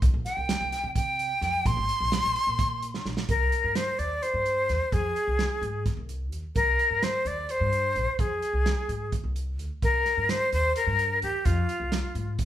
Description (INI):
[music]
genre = progressive instrumental, band music in an uneven meter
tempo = 257 BPM (eighths)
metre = 7/8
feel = straight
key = C minor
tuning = A4 = 440 Hz
[part]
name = upright bass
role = bass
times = 0.0-12.3 s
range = Ab1 to C3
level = -30 LUFS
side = equal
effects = none
[part]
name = warm soul drum kit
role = drums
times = 0.0-12.4 s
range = hi-hat, kick drum, snare drum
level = -30 LUFS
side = right 2 dB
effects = none
[part]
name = breathy bright jazz flute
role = melody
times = 0.3-12.4 s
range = F4 to C6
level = -26 LUFS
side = left 1 dB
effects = none
[sound]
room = moderate large studio reverb, RT60 0.9 s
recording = band playing live in one room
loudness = -24 LUFS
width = side -12 dB against mid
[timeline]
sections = 0.0-3.3 A section; 3.3-12.4 B section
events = drum fill 2.9-3.3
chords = 0.0 C5; 1.7 Bbsus2; 3.3 Cm7; 4.9 Fm; 6.6 Cm7; 8.2 Fm; 9.8 Cm7; 11.5 Fm